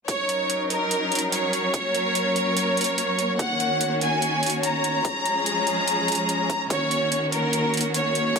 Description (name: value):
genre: heavy wobble dubstep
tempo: 145 BPM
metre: 4/4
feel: half-time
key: Eb minor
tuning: A4 = 440 Hz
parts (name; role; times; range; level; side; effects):
- clear studio violin section; melody; 0.1-8.4 s; Bb4 to Bb5; -24 LUFS; equal; tape echo
- rich chamber string section; sustained chords; 0.1-8.4 s; Eb3 to Db5; -25 LUFS; equal; sidechain pumping
- electronic hi-hat; drums; 0.1-8.4 s; none; -28 LUFS; right 2 dB; none
- electronic kick drum; drums; 0.1-8.4 s; none; -30 LUFS; equal; high-pass filter on kick
room: moderate digital room reverb, RT60 1.0 s, studio reverb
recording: none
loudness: -21 LUFS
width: side -5 dB against mid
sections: 0.1-8.4 A section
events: none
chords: 0.1 Ebm7; 1.7 Gb; 3.4 Ebm7; 5.0 Db; 6.7 Ebm7